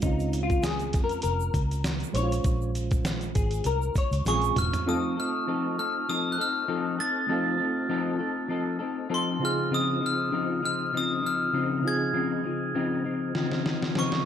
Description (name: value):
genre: indie pop, bedroom pop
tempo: 99 BPM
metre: 4/4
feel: swing 55% on 16ths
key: unclear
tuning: A4 = 440 Hz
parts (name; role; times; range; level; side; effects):
- mellow reed electric piano; accompaniment; 0.0-14.3 s; Db3 to C5; -33 LUFS; right 5 dB; fast tremolo
- semi-hollow electric guitar; accompaniment; 0.0-14.3 s; Db3 to Db5; -29 LUFS; left 5 dB; ensemble chorus, vibrato effect
- vintage muted fingered electric bass; bass; 0.0-4.7 s; E1 to F2; -29 LUFS; equal; none
- dusty soul sampler-style drum kit; drums; 0.0-4.9, 13.3-14.2 s; hi-hat, kick drum, snare drum, toms; -28 LUFS; equal; none
- egg shaker; percussion; 0.0-4.9 s; none; -47 LUFS; right 21 dB; none
- glockenspiel with brass mallets; melody; 4.3-14.1 s; C6 to A6; -28 LUFS; equal; lush chorus, slapback echo
room: moderate small room reverb, RT60 0.5 s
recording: none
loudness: -25 LUFS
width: side -9 dB against mid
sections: 0.0-4.9 A section; 4.9-14.3 B section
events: clean electric guitar solo 0.0-4.9; drum fill 4.3-4.9, 13.3-14.3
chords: 0.0 Bbm9/Db; 2.2 Bbm9; 4.9 F7; 9.4 Dbmaj9